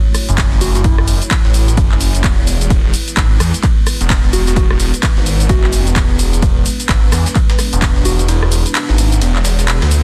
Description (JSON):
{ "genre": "bass house", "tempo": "129 BPM", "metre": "4/4", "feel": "swing 61% on 16ths", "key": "unclear", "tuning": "A4 = 440 Hz", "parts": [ { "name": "dark analog pad", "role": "sustained chords", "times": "0.0-10.0 s", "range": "G#3 to C#5", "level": "-29 LUFS", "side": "equal", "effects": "chorus, sidechain pumping" }, { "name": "breakbeat sampler-style drum kit", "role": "drums", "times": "0.1-10.0 s", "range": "hi-hat, snare drum", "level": "-31 LUFS", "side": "equal", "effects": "none" }, { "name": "house drum kit", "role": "drums", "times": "0.1-10.0 s", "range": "cabasa, handclaps, hi-hat, ride cymbal, rim click", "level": "-22 LUFS", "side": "equal", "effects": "none" }, { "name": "phased detuned saw bass", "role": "bass", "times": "0.3-10.0 s", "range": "E1 to E2", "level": "-16 LUFS", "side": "equal", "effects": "phaser, overdrive, sidechain pumping" }, { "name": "electronic kick drum", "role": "drums", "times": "0.4-7.9 s", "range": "none", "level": "-16 LUFS", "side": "equal", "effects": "none" }, { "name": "soft struck synth lead", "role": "melody", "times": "0.6-1.3, 4.3-8.8 s", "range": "E4 to F#4", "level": "-25 LUFS", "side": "equal", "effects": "chorus, digital delay" } ], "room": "digital ambience", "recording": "dense, heavily limited modern master", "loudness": "-13 LUFS", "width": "mono", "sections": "0.0-10.0 A section", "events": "kick drops out 8.3-10.0", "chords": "0.0 F#m7; 2.7 E" }